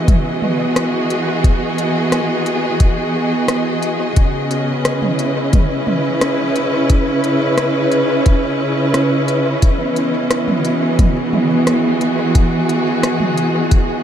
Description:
ambient dub; 88 BPM; 4/4; straight; A4 = 441 Hz
warm studio string section; sustained chords; 0.0-14.0 s; C#3 to D#5; -15 LUFS; equal
electronic kick drum; drums; 0.1-13.9 s; -13 LUFS; equal; studio reverb
organic electronic drum kit; drums; 0.1-13.9 s; hi-hat, rim click, toms; -23 LUFS; equal; studio reverb, dub echo
moderate huge ambient reverb, RT60 8.5 s; dreamy mix soaked in reverb; -14 LUFS; side -9 dB against mid
0.0-14.0 A section
0.0 Emaj7; 4.2 C#m7; 9.6 Emaj7

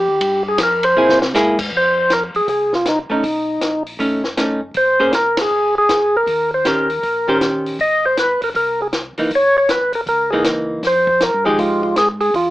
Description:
soul jazz organ trio; 158 BPM; 4/4; swing 64% on 8ths; A4 = 440 Hz
percussive tonewheel organ; melody; 0.0-12.5 s; Eb4 to Eb5; -15 LUFS; equal; slow rotary speaker, overdrive
mellow tonewheel organ; bass; 0.0-12.5 s; Fb1 to C3; -32 LUFS; equal; slow rotary speaker
compact cocktail drum kit; drums; 0.2-12.5 s; crash cymbal, hi-hat, kick drum, ride cymbal, snare drum; -24 LUFS; left 1 dB
archtop guitar, miked and amplified; accompaniment; 1.0-11.9 s; Eb3 to C5; -18 LUFS; equal
moderate club reverb, RT60 0.5 s; AM radio sound; -14 LUFS; side -16 dB against mid
0.0-1.7 A section; 1.7-12.5 B section
tonewheel organ solo 0.0-1.7; drum fill 1.0-1.3; band accent 5.3
0.2 Fsus2; 1.0 Caug7; 1.7 F5; 3.2 B9; 4.8 Bb7sus2; 6.3 Eb6; 7.8 Ab; 9.3 Gb13; 10.8 Fm9

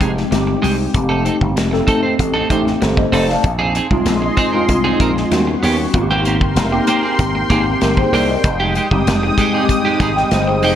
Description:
polished 1980s jazz-funk pop; 96 BPM; 4/4; straight; A4 = 440 Hz
mellow tine electric piano; accompaniment; 0.0-10.8 s; G3 to A5; -17 LUFS; left 1 dB; medium stereo tremolo, ensemble chorus
clean electric guitar; riff; 0.0-10.8 s; Ab3 to C5; -20 LUFS; right 3 dB; lush chorus
slap bass with an envelope filter; bass; 0.0-10.8 s; F1 to Eb2; -20 LUFS; equal
modern studio drum kit; drums; 0.0-10.8 s; hi-hat, kick drum, snare drum; -20 LUFS; equal; gated reverb
lush unison pad; sustained chords; 3.8-10.8 s; Ab3 to Eb6; -22 LUFS; equal; chorus
moderate plate reverb, RT60 1.5 s, studio ambience; bright 1980s-style digital production; -13 LUFS; side -10 dB against mid
0.0-10.8 A section
0.0 Fm9; 0.9 F7; 3.4 Bb9sus4; 5.3 Eb7alt; 5.9 Abmaj9; 8.4 Fm9

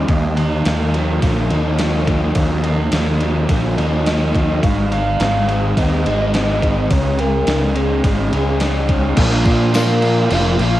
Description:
rock, shoegaze and dream pop; 106 BPM; 4/4; straight; Eb dorian; A4 = 439 Hz
crunchy overdriven guitar; riff; 0.0-10.8 s; Eb2 to Ab4; -22 LUFS; right 6 dB; reverse reverb, cassette tape
overdriven semi-hollow guitar; riff; 0.0-10.8 s; Eb2 to Ab4; -22 LUFS; left 6 dB; analog chorus, cassette tape
fuzz fingered electric bass; bass; 0.0-10.8 s; F1 to Bb2; -18 LUFS; equal; overdrive
gated 80s digital drum machine; drums; 0.1-10.7 s; crash cymbal, kick drum, ride cymbal, snare drum; -21 LUFS; equal; gated reverb, gated reverb snare, overdrive, cassette tape
warbly nostalgic lead; melody; 4.1-10.8 s; Ab4 to F5; -22 LUFS; right 1 dB; chorus, cassette tape, tape echo
tambourine; percussion; 9.7-9.9 s; -31 LUFS; left 5 dB
light reverb; home recording on cassette; -14 LUFS; side -14 dB against mid
0.0-9.2 A section; 9.2-10.8 B section
0.1 Ebm; 4.6 Ab; 6.9 Dbsus2; 9.2 Bb

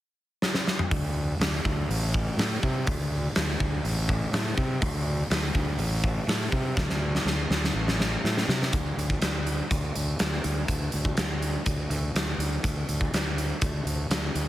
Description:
hard rock; 123 BPM; 4/4; straight; A4 = 440 Hz
big rock drum kit; drums; 0.4-14.5 s; hi-hat, kick drum, snare drum, toms; -27 LUFS; equal
fuzz fingered electric bass; bass; 0.9-14.5 s; A1 to C3; -28 LUFS; equal; overdrive
light reverb; heavily compressed radio sound; -24 LUFS; side -14 dB against mid
0.9-8.7 A section; 8.7-14.5 B section
drum fill 0.4-0.9, 6.8-8.7

